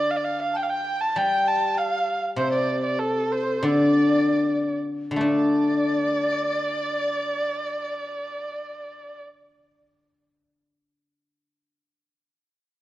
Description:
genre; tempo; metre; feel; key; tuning
chinese traditional, Chinese chamber ensemble; 66-100 BPM; 2/4; rubato; D yu mode; A4 = 440 Hz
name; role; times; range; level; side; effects
dark erhu; melody; 0.0-9.2 s; A4 to A5; -26 LUFS; right 2 dB; none
mellow hollow dizi; second line; 0.0-9.2 s; A4 to A5; -29 LUFS; left 2 dB; none
guzheng; accompaniment; 0.0-11.7 s; C3 to D4; -24 LUFS; left 1 dB; none
room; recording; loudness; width
light reverb; worn, warbling old tape, cassette tape, warbly pitch drift; -21 LUFS; side -15 dB against mid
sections
0.0-5.2 A section; 5.2-8.7 B section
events
slowing down 2.4-5.2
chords
none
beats
0.56 | 1.17 1.78 | 2.38 3.00 | 3.65 4.38 | 5.22 6.12 | 7.00 7.86

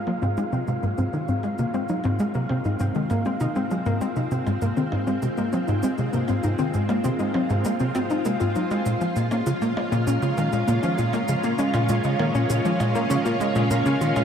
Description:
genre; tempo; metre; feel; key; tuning
ambient, sequencer-driven space music; 99 BPM; 4/4; straight; unclear; A4 = 440 Hz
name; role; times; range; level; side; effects
string machine, full ensemble; sustained chords; 0.0-14.2 s; Gb3 to F5; -29 LUFS; right 1 dB; ensemble chorus
tight sequencer bass; riff; 0.0-14.2 s; Ab2 to Eb4; -24 LUFS; right 1 dB; lush chorus, cassette tape, tape echo
wind-like tuned noise texture; texture; 0.0-14.2 s; F4 to F5; -31 LUFS; left 1 dB; built-in reverb
warbly dusty pluck; arpeggios; 0.1-14.2 s; Ab3 to Gb4; -27 LUFS; left 2 dB; chorus, auto-pan, cassette tape, tape echo
percussion blips and shaker; percussion; 0.1-14.2 s; none; -40 LUFS; right 2 dB; tape echo
room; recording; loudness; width
moderate huge ambient reverb, RT60 7.6 s; none; -21 LUFS; side -8 dB against mid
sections
0.0-14.2 A section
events
fade-in on string machine 0.0-14.2; fade-in on drum 0.0-14.2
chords
0.0 Ab13; 8.9 Bbm7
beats
0.38 0.98 | 1.59 2.19 2.80 3.41 | 4.01 4.62 5.22 5.83 | 6.44 7.04 7.65 8.26 | 8.86 9.47 10.07 10.68 | 11.29 11.89 12.50 13.10 | 13.71

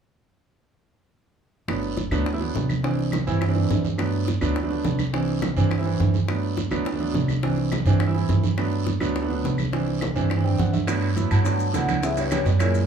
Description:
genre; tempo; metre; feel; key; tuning
Afro-Cuban jazz; 209 BPM; 4/4; straight; G major; A4 = 440 Hz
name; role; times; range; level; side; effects
warm concert grand piano; accompaniment; 1.7-12.8 s; E3 to G5; -25 LUFS; right 4 dB; none
upright bass; bass; 1.7-12.9 s; G1 to G2; -24 LUFS; right 1 dB; none
bongos; percussion; 1.7-12.9 s; none; -34 LUFS; left 7 dB; none
claves; percussion; 1.7-12.7 s; none; -38 LUFS; left 2 dB; none
congas; percussion; 1.7-12.9 s; none; -31 LUFS; right 1 dB; none
guiro; percussion; 1.7-12.9 s; none; -40 LUFS; right 6 dB; none
maracas; percussion; 10.9-12.9 s; none; -42 LUFS; left 8 dB; none
timbales; percussion; 10.9-12.7 s; none; -33 LUFS; right 4 dB; none
vibraphone with soft mallets; melody; 11.3-12.9 s; C#5 to A5; -27 LUFS; left 4 dB; none
mellow trombone; second line; 11.3-12.9 s; G2 to F#3; -30 LUFS; right 4 dB; none
room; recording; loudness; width
light reverb; studio ambience; -21 LUFS; side -7 dB against mid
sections
1.7-10.9 A section; 10.9-12.9 B section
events
grand piano fill 10.3-10.9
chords
1.7 Gmaj7; 2.8 Cadd9; 4.0 Gmaj7; 5.1 Cadd9; 6.3 Gmaj7; 7.4 Cadd9; 8.6 Gmaj7; 9.7 Cadd9; 10.9 Gmaj9; 12.0 C#m7b5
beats
| 1.69 1.97 2.26 2.55 | 2.83 3.12 3.41 3.70 | 3.98 4.27 4.56 4.85 | 5.13 5.42 5.71 6.00 | 6.28 6.57 6.86 7.15 | 7.43 7.72 8.01 8.29 | 8.58 8.87 9.16 9.44 | 9.73 10.02 10.30 10.59 | 10.88 11.16 11.45 11.74 | 12.03 12.31 12.60

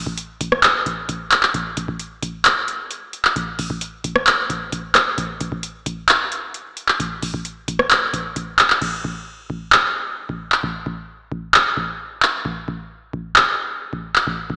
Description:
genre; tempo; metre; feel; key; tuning
hip hop; 132 BPM; 4/4; half-time; none; none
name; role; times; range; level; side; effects
booming analog drum machine; drums; 0.1-14.6 s; crash cymbal, handclaps, hi-hat, kick drum, rim click; -16 LUFS; equal; none
room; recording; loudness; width
wet lush hall reverb, RT60 1.7 s, digital ambience; dreamy mix soaked in reverb, small speaker sound; -17 LUFS; side -25 dB against mid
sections
0.0-8.8 A section; 8.8-14.6 B section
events
hi-hats muted 8.8-14.6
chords
none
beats
0.18 0.63 1.09 | 1.54 2.00 2.45 2.91 | 3.36 3.82 4.27 4.72 | 5.18 5.63 6.09 6.54 | 7.00 7.45 7.91 8.36 | 8.82 9.27 9.72 10.18 | 10.63 11.09 11.54 12.00 | 12.45 12.91 13.36 13.82 | 14.27

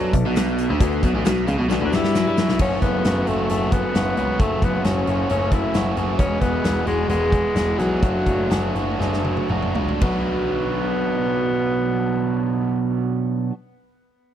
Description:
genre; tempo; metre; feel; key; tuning
classic rock; 113-134 BPM; 4/4; straight; B minor; A4 = 440 Hz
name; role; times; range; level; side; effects
clear upright piano; accompaniment; 0.0-2.4 s; B3 to A4; -29 LUFS; left 9 dB; none
biting overdriven guitar; riff; 0.0-13.5 s; E2 to G#4; -23 LUFS; right 2 dB; none
clear concert grand piano; bass; 0.0-13.1 s; E1 to G2; -24 LUFS; left 1 dB; none
big rock drum kit; drums; 0.1-10.1 s; crash cymbal, hi-hat, kick drum, snare drum, toms; -24 LUFS; equal; none
tube shaker; percussion; 0.1-2.5 s; none; -45 LUFS; right 16 dB; none
breathy tenor saxophone; melody; 1.8-13.1 s; F#3 to E4; -25 LUFS; left 2 dB; none
room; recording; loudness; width
small room reverb; dry, close 1970s-style studio recording; -18 LUFS; side -10 dB against mid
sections
0.0-2.6 A section; 2.6-10.0 B section; 10.0-14.3 C section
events
drum fill 1.7-2.6, 9.0-10.0; slowing down 6.2-10.0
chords
0.0 Bm; 2.6 F#m; 6.2 E; 8.0 D/F#; 10.0 Bm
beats
0.36 | 0.80 1.25 1.70 2.15 | 2.60 3.05 3.50 3.94 | 4.39 4.84 5.29 5.74 | 6.19 6.64 7.10 7.56 | 8.03 8.51 9.00 9.50 | 10.02 10.55 11.08 11.61 | 12.14 12.67 13.20

